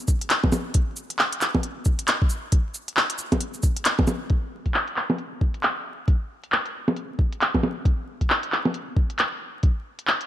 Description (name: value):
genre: future garage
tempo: 135 BPM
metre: 4/4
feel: swing 61% on 16ths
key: none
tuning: none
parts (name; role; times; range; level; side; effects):
- electronic kick drum; drums; 0.1-9.7 s; none; -21 LUFS; equal; none
- organic electronic drum kit; drums; 0.1-10.3 s; bongos, cabasa, handclaps, hi-hat; -23 LUFS; equal; low-pass filter on hats, low-pass filter on snare, low-pass filter on perc, low-pass filter on room
room: light reverb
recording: vinyl crackle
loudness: -22 LUFS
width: side -12 dB against mid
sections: 0.0-4.3 A section; 4.3-10.3 B section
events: none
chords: none